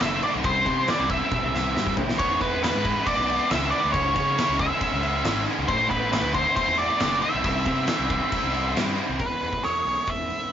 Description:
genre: quiet-loud alternative rock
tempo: 137 BPM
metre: 4/4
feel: straight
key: E mixolydian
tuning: A4 = 440 Hz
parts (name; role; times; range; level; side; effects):
- octave-fuzz lead guitar; melody; 0.0-10.5 s; B4 to E5; -24 LUFS; equal; distortion
- high-gain distorted guitar; riff; 0.0-9.2 s; A2 to E4; -29 LUFS; equal; distortion
- fuzz fingered electric bass; bass; 0.0-10.3 s; F#1 to C#3; -30 LUFS; equal; overdrive
- oversized low-tuned drum kit; drums; 0.0-10.4 s; crash cymbal, hi-hat, kick drum, rim click, snare drum, toms; -26 LUFS; equal; none
- twelve-string electric guitar; arpeggios; 9.2-10.5 s; E2 to E4; -39 LUFS; right 2 dB; none
room: moderate small room reverb, RT60 0.5 s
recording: rough rehearsal-room recording, nothing above 7.5 kHz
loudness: -21 LUFS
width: side -9 dB against mid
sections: 0.0-9.2 A section; 9.2-10.5 B section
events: drum fill 1.3-2.2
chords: 0.4 C; 2.2 E; 3.9 C#m; 5.7 Am; 7.4 C; 9.2 E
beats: 0.00 | 0.44 0.88 1.31 1.75 | 2.19 2.63 3.06 3.50 | 3.94 4.38 4.81 5.25 | 5.69 6.12 6.56 7.00 | 7.44 7.88 8.32 8.76 | 9.20 9.64 10.09

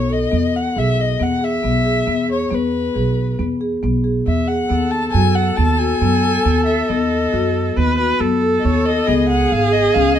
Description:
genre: contemporary instrumental, chamber music in an uneven meter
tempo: 137 BPM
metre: 5/4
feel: straight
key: B mixolydian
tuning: A4 = 440 Hz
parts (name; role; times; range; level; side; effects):
- dark violin; melody; 0.0-10.2 s; B4 to A5; -21 LUFS; left 5 dB; none
- marimba with soft mallets; arpeggios; 0.0-10.2 s; B3 to A4; -19 LUFS; left 3 dB; none
- upright bass; bass; 0.0-10.2 s; G#1 to F#2; -20 LUFS; right 3 dB; none
- clear viola; second line; 4.7-10.2 s; G#4 to B4; -20 LUFS; right 3 dB; none
room: moderate studio reverb, RT60 0.8 s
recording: dark, warm production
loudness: -15 LUFS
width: side -9 dB against mid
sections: 0.0-10.2 A section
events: none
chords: 0.3 E; 4.7 B7/D#; 9.1 C#5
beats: | 0.33 0.77 1.21 1.65 2.08 | 2.52 2.96 3.40 3.84 4.27 | 4.71 5.15 5.58 6.02 6.46 | 6.89 7.33 7.77 8.21 8.64 | 9.08 9.52 9.95

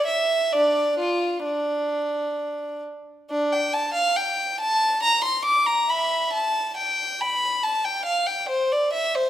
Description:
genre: classical, baroque-style suite movement for unaccompanied violin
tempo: 64-70 BPM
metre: 3/4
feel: rubato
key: D minor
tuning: A4 = 439 Hz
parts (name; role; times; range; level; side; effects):
- rich violin; solo; 0.0-9.3 s; D4 to D6; -21 LUFS; equal; none
room: moderate recital hall reverb, RT60 1.3 s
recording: none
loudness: -21 LUFS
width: side -12 dB against mid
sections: 0.0-3.3 A section; 3.3-9.3 B section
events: none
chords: none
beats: | 0.52 1.45 2.38 | 3.31 4.18 5.04 | 5.90 6.78 7.65 | 8.51

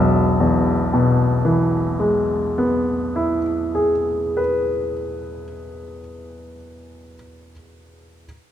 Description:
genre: classical, romantic nocturne for solo piano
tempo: 36 BPM (dotted quarters)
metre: 12/8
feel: rubato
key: E major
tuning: A4 = 440 Hz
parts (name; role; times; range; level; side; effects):
- warm baby grand piano; solo; 0.0-8.3 s; E1 to E5; -18 LUFS; left 1 dB; none
room: moderate recital hall reverb, RT60 1.7 s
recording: none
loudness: -17 LUFS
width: side -10 dB against mid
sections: 0.0-6.0 A section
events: none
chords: 0.0 E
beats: 1.11 2.75 4.39

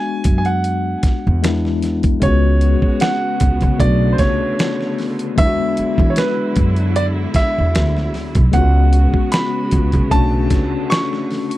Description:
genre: R&B, neo-soul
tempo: 76 BPM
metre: 4/4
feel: swing 53% on 16ths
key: unclear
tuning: A4 = 440 Hz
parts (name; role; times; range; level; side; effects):
- clear grand piano; melody; 0.0-11.6 s; B4 to C#6; -22 LUFS; right 2 dB; tape echo
- tine electric piano; accompaniment; 0.0-11.6 s; G#3 to F#4; -21 LUFS; left 5 dB; medium stereo tremolo
- dusty soul sampler-style drum kit; drums; 0.2-11.6 s; hi-hat, kick drum, snare drum; -18 LUFS; equal; none
- upright bass; bass; 0.3-10.7 s; B1 to E3; -16 LUFS; right 1 dB; none
- rich studio string section; sustained chords; 2.2-11.6 s; C#3 to F#4; -27 LUFS; right 3 dB; none
room: little or no reverb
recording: dry, close 1970s-style studio recording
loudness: -14 LUFS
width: side -15 dB against mid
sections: 0.0-11.6 A section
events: none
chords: 0.0 E9; 2.2 C#7sus4; 3.8 Bm9; 5.4 E9; 8.5 C#7sus4; 10.1 Bm9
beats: 0.64 1.43 | 2.22 3.01 3.80 4.59 | 5.38 6.17 6.96 7.75 | 8.54 9.32 10.11 10.90

